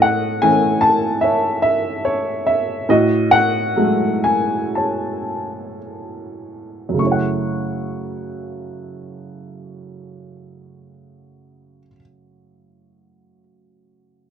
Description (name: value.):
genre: classical, lyrical solo piano.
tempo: 48-76 BPM.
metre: 4/4.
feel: rubato.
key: F# minor.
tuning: A4 = 439 Hz.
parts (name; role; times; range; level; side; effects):
clear upright piano; solo; 0.0-14.3 s; F#2 to C#6; -17 LUFS; equal; none.
room: light reverb.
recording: worn, warbling old tape, cassette tape, warbly pitch drift.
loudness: -16 LUFS.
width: side -8 dB against mid.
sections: 0.0-7.0 A section; 7.0-11.8 B section.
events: slowing down 0.0-7.0.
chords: 0.0 A; 2.9 F#madd9/A; 7.0 F#m7.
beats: 0.41 1.21 2.04 | 2.89 3.77 4.74 5.81 | 7.00 8.21 9.38 10.57.